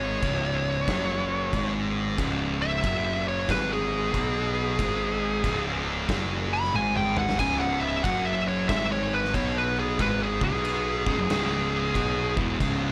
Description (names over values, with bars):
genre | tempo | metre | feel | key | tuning
stoner and doom metal | 92 BPM | 4/4 | swing 64% on 8ths | C# minor | A4 = 438 Hz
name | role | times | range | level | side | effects
fuzz lead guitar | melody | 0.0-12.4 s | G#4 to B5 | -30 LUFS | equal | distortion, delay
thick fuzz guitar | riff | 0.0-12.9 s | C#2 to B3 | -33 LUFS | equal | distortion
thick fuzz guitar | riff | 0.0-12.9 s | C#2 to B3 | -35 LUFS | equal | distortion
fuzz picked electric bass | bass | 0.0-12.9 s | C#1 to B1 | -33 LUFS | equal | overdrive
oversized low-tuned drum kit | drums | 0.2-12.8 s | crash cymbal, kick drum, snare drum, splash cymbal, toms | -34 LUFS | equal | none
room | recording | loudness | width
light reverb, small room ambience | none | -26 LUFS | mono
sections
0.0-12.9 A section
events
lead electric guitar solo 0.0-12.9; drum fill 6.7-7.4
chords
0.0 C#5